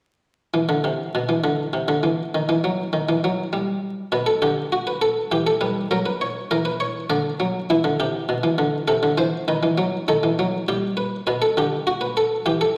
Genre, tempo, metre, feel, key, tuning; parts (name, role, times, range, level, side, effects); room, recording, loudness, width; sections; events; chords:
classical, baroque-style two-part invention for harpsichord; 101 BPM; 3/4; straight; A4 = 439 Hz
buff-stop harpsichord; solo; 0.5-12.8 s; B2 to D5; -22 LUFS; equal
wet recital hall reverb, RT60 1.4 s; vinyl crackle; -22 LUFS; mono
0.5-12.8 A section
0.5 N.C.; 4.1 Bm; 5.3 Em; 5.9 F#; 7.1 D; 7.7 Em; 8.9 Am/C; 9.5 B/D#; 10.7 G; 11.3 Bm